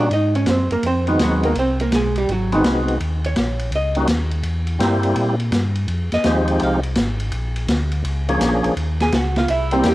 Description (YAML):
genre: soul jazz organ trio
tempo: 166 BPM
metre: 4/4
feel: swing 66% on 8ths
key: Eb mixolydian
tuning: A4 = 440 Hz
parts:
  - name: percussive tonewheel organ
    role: melody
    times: 0.0-9.9 s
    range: F3 to Ab4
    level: -20 LUFS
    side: equal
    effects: slow rotary speaker, overdrive, chorus vibrato, cassette tape
  - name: archtop guitar, miked and amplified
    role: accompaniment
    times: 0.0-4.0, 6.1-6.8, 9.0-9.9 s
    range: Eb3 to Ab5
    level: -20 LUFS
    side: right 2 dB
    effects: none
  - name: mellow tonewheel organ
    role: bass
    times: 0.0-9.9 s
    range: Ab1 to Bb2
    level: -21 LUFS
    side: equal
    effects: slow rotary speaker
  - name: vintage drum kit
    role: drums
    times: 0.1-9.9 s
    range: hi-hat, ride cymbal, snare drum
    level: -24 LUFS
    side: equal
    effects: cassette tape
room: small room ambience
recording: home recording on cassette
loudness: -17 LUFS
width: side -16 dB against mid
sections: 0.0-9.9 A section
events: hollow-body jazz guitar solo 0.0-9.9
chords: 0.1 Ab7#9; 3.0 Eb7(no3); 4.4 C7; 5.9 Fm7; 7.3 Bb7#9; 8.8 Ebm7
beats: | 0.12 0.48 0.84 1.20 | 1.56 1.92 2.28 2.64 | 3.00 3.36 3.72 4.08 | 4.44 4.80 5.16 5.52 | 5.88 6.24 6.61 6.96 | 7.33 7.69 8.05 8.41 | 8.77 9.13 9.49 9.85